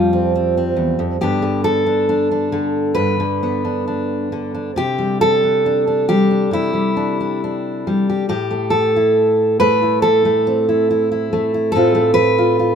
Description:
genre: folk, solo fingerstyle acoustic guitar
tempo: 69 BPM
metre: 4/4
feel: rubato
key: C major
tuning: A4 = 439 Hz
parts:
  - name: fingerpicked steel-string acoustic guitar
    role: solo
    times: 0.0-12.8 s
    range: E2 to B4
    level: -15 LUFS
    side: equal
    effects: none
room: light reverb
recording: minimal, uncompressed stereo recording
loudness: -15 LUFS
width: side -7 dB against mid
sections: 0.0-12.8 A section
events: none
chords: 0.0 Fsus2; 1.2 Gadd9; 4.7 Csus2; 8.3 Am; 11.7 F/A

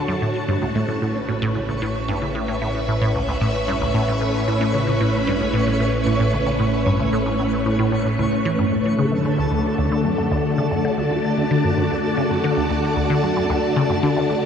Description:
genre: ambient, sequencer-driven space music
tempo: 113 BPM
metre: 4/4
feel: straight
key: D major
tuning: A4 = 441 Hz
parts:
  - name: phased string machine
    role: sustained chords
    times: 0.0-14.5 s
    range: A2 to A5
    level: -21 LUFS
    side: equal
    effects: ensemble chorus, phaser
  - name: resonant blip pluck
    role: riff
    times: 0.0-14.4 s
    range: C#2 to E3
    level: -22 LUFS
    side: equal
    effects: phaser, analog delay
  - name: analog drone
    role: bass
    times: 1.3-8.7 s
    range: A1 to D2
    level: -30 LUFS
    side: equal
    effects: chorus
  - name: twinkling granular texture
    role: texture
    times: 0.0-14.5 s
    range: A4 to C#5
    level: -28 LUFS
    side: left 1 dB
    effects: built-in reverb
room: wet huge ambient reverb, RT60 7.8 s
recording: worn, warbling old tape, cassette tape, warbly pitch drift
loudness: -18 LUFS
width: side -7 dB against mid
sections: 0.0-8.7 A section; 8.7-14.5 A section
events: none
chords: 0.2 Aadd9; 8.7 D

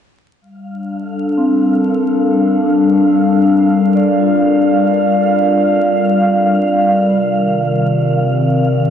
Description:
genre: ambient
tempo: free time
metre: none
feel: none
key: G minor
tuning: A4 = 440 Hz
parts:
  - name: warbly tape-like pad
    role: sustained chords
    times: 0.7-8.9 s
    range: C3 to F5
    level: -13 LUFS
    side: left 2 dB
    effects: chorus, built-in reverb
  - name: wind-like tuned noise texture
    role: texture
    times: 0.9-8.9 s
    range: F5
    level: -24 LUFS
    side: equal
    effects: built-in reverb, ensemble chorus
  - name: vibraphone with soft mallets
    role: arpeggios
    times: 1.4-8.9 s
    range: C4 to D5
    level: -16 LUFS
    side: right 1 dB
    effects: low-pass filter, tape echo
room: wet lush hall reverb, RT60 2.1 s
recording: dreamy mix soaked in reverb, vinyl crackle, nothing above 10.7 kHz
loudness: -11 LUFS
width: side -8 dB against mid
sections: 0.4-8.9 A section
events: none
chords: 0.4 Gm7; 7.1 Cm7

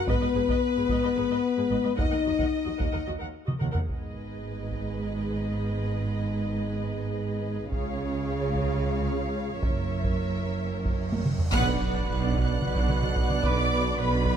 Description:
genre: cinematic, epic orchestral film score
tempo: 220 BPM (eighths)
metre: 7/8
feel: straight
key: G# dorian from 3.9 s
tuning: A4 = 438 Hz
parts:
  - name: warm symphonic violin section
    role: melody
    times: 0.0-14.4 s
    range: B4 to F#6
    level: -36 LUFS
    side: left 2 dB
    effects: none
  - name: rich chamber violin section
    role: second line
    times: 0.0-14.4 s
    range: B4 to F#5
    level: -36 LUFS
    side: left 1 dB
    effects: none
  - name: mellow French horn section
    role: sustained chords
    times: 0.0-13.6 s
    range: G#3 to E#4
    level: -31 LUFS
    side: left 7 dB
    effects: none
  - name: rich symphonic viola section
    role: accompaniment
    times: 0.1-14.4 s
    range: B3 to F#5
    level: -36 LUFS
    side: right 1 dB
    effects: none
  - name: warm symphonic cello section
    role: bass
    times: 0.1-14.4 s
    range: D#2 to C#3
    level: -33 LUFS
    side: right 3 dB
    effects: none
  - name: warm symphonic double bass section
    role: bass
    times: 0.1-14.4 s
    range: F#1 to D#2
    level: -32 LUFS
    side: right 4 dB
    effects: none
  - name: solo taiko drums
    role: drums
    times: 0.1-14.4 s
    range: none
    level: -29 LUFS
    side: right 1 dB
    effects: none
  - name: cymbal swell, clash cymbals and concert bass drum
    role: percussion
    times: 7.7-12.6 s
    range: none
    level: -36 LUFS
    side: right 1 dB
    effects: none
  - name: cymbal swell and impact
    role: sound effects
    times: 10.7-13.5 s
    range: none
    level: -42 LUFS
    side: equal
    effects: none
  - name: pipe organ, flutes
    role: sustained chords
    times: 11.5-14.4 s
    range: B3 to D5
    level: -34 LUFS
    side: right 2 dB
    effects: none
  - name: dark trumpet section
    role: stabs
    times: 11.5-13.6 s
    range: B4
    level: -39 LUFS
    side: right 2 dB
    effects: none
  - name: mellow tuba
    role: bass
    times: 11.5-14.4 s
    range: B1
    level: -32 LUFS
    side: right 5 dB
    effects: none
room: light reverb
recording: close, detailed microphones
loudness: -25 LUFS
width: side -8 dB against mid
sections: 0.0-3.9 A section; 3.9-11.5 B section; 11.5-14.4 C section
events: drum fill 3.5-3.9, 11.1-11.5; cymbal swell 10.7-11.5; band accent 11.5-12.1; impact 11.5-13.4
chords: 0.1 G#m; 2.0 D#m; 3.9 G#m; 7.7 C#; 9.6 F#7; 11.5 Bm

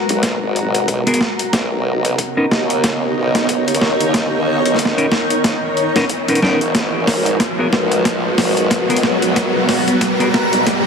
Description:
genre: glitch hop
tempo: 92 BPM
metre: 4/4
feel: swing 58% on 16ths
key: G# minor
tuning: A4 = 440 Hz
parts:
  - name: dark analog pad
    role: sustained chords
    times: 0.0-10.9 s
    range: G#3 to D#5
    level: -22 LUFS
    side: equal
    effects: chorus, phaser, sidechain pumping
  - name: riser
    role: sound effects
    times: 0.1-10.9 s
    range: none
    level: -24 LUFS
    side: right 1 dB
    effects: none
  - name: granular cloud pad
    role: texture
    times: 0.0-10.9 s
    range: B3 to A#5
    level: -21 LUFS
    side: left 1 dB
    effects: built-in reverb, sidechain pumping
  - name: formant-sweep wobble bass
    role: bass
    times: 0.1-10.8 s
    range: F#1 to D#2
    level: -21 LUFS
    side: equal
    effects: chorus, tube saturation, high-pass filter
  - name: boom bap sampler-style drum kit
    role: drums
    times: 0.1-10.8 s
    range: hi-hat, snare drum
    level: -19 LUFS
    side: equal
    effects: overdrive
  - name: electronic kick drum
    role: drums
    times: 0.2-10.8 s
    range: none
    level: -30 LUFS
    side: equal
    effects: none
  - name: semi-hollow electric guitar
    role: stabs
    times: 1.1-10.3 s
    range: B3 to A#4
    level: -21 LUFS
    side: equal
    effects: sidechain pumping, tape echo
room: moderate lush hall reverb, RT60 2.0 s, digital ambience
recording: heavily compressed radio sound, multiband compression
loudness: -14 LUFS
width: side -6 dB against mid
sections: 0.0-10.9 A section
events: build-up 0.0-10.9; drum fill 0.0-10.9; riser 0.1-10.9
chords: 0.0 G#m9; 1.5 Bmaj9; 6.8 G#m9

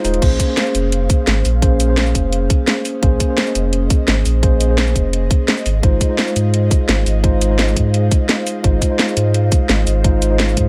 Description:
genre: liquid drum and bass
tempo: 171 BPM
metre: 4/4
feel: straight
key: Bb minor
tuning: A4 = 440 Hz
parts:
  - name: mellow tine electric piano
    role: accompaniment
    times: 0.0-10.7 s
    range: Ab3 to C5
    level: -23 LUFS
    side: equal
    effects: dub echo
  - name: airy breathy pad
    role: sustained chords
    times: 0.0-10.7 s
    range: Db4 to F5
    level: -31 LUFS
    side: equal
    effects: chorus, sidechain pumping
  - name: warm sub bass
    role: bass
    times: 0.0-10.7 s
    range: Eb1 to Ab2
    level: -19 LUFS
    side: equal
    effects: none
  - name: garage drum kit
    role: drums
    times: 0.0-10.6 s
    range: cabasa, crash cymbal, hi-hat, snare drum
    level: -21 LUFS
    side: equal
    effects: none
  - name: electronic kick drum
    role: drums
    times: 0.2-10.6 s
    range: none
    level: -18 LUFS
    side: equal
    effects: none
room: little or no reverb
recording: none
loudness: -16 LUFS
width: mono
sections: 0.2-10.7 A section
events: break 0.0; drop 0.2-10.7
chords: 0.2 Bbm9; 5.7 Fm7/Ab

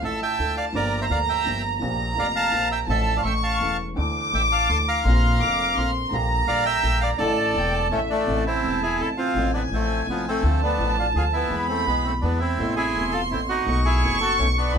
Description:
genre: tango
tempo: 167 BPM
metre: 3/4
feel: rubato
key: D minor, A harmonic minor from 8.3 s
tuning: A4 = 441 Hz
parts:
  - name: bandoneon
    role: melody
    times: 0.0-14.8 s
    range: F3 to C6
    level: -24 LUFS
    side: equal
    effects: none
  - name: warm chamber violin section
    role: second line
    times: 0.0-14.8 s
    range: E5 to D6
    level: -25 LUFS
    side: right 2 dB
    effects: none
  - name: warm baby grand piano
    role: accompaniment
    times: 0.0-14.8 s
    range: E1 to A4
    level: -29 LUFS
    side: equal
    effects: none
  - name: upright bass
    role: bass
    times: 0.0-14.8 s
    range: E1 to E2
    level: -26 LUFS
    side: equal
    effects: none
room: moderate small room reverb, RT60 0.5 s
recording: band playing live in one room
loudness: -20 LUFS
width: side -7 dB against mid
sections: 0.0-8.3 A section; 8.3-14.8 B section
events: none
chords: 0.0 Dmadd9; 0.7 Gm7; 1.8 Bb6; 2.9 Dm/A; 3.2 A; 4.0 Dsus2; 5.1 Bbadd9; 6.1 Gm/Bb; 7.2 Asus4; 7.9 A; 8.3 Am; 9.4 F/A; 10.4 Dm; 11.5 E; 12.6 Amadd9; 13.7 B7

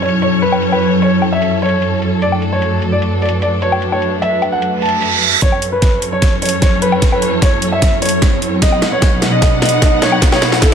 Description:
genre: heavy wobble dubstep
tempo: 150 BPM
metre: 4/4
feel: half-time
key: F# minor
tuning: A4 = 437 Hz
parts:
  - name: dark concert grand piano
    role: melody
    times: 0.0-10.7 s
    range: A4 to A5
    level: -17 LUFS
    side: equal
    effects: dub echo
  - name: dark symphonic string section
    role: sustained chords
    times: 0.0-10.7 s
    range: F#2 to F#5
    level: -18 LUFS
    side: equal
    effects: vintage 12-bit sampler grit, sidechain pumping, low-pass filter
  - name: dubstep drum kit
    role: drums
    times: 0.0-10.7 s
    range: hi-hat, snare drum, woodblock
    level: -19 LUFS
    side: left 1 dB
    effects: high-pass filter on hats, low-pass filter on hats, small room reverb, high-pass filter on perc, low-pass filter on perc, high-pass filter on snare, low-pass filter on snare
  - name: ethereal airy pad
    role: texture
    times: 0.0-10.7 s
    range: B2 to E5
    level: -19 LUFS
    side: equal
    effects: ensemble chorus, built-in reverb, sidechain pumping
  - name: reverse cymbal and riser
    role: sound effects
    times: 4.8-10.7 s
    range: none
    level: -20 LUFS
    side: right 4 dB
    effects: none
  - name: electronic kick drum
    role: drums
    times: 5.4-10.7 s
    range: none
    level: -13 LUFS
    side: equal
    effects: small room reverb
room: light reverb, digital ambience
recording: none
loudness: -11 LUFS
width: side -7 dB against mid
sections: 0.0-5.4 A section; 5.4-10.7 B section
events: reverse cymbal 4.8-5.4; build-up 5.4-10.7; drum fill 5.4-10.7; riser 5.4-10.7; filter sweep on string section 5.4-10.7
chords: 0.0 F#m; 2.2 D/F#; 5.4 F#m; 8.6 B

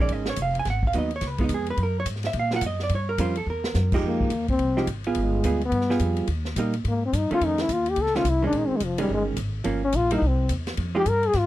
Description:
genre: jazz, small-group swing and bop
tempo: 213 BPM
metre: 4/4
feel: swing 62% on 8ths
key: F minor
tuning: A4 = 438 Hz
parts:
  - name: vintage hollow-body jazz guitar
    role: accompaniment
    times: 0.0-11.1 s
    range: Eb3 to Ab5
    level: -26 LUFS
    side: right 4 dB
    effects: none
  - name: upright bass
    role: bass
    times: 0.0-11.5 s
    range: F1 to Bb2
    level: -26 LUFS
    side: equal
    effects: none
  - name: swinging big-band drum kit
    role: drums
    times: 0.1-11.4 s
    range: crash cymbal, hi-hat, kick drum, ride cymbal, snare drum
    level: -32 LUFS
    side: equal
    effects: none
  - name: mellow trombone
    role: melody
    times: 4.1-11.5 s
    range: F3 to Bb4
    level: -24 LUFS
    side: left 3 dB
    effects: none
room: little or no reverb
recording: dry, close 1970s-style studio recording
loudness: -22 LUFS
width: side -14 dB against mid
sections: 0.0-4.0 A section; 4.0-11.5 A section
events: drum fill 3.5; trombone solo 4.0-11.5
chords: 0.0 Bbm7; 0.7 Abm7; 1.2 Db7; 1.8 Gbmaj9; 2.9 Gm7b5; 3.5 Emaj9#11; 4.0 Fm9; 5.2 G7b9; 6.3 Eb; 7.4 F7b13; 8.5 Bbm7; 9.7 Gm7b5; 10.2 C; 10.8 Fm9

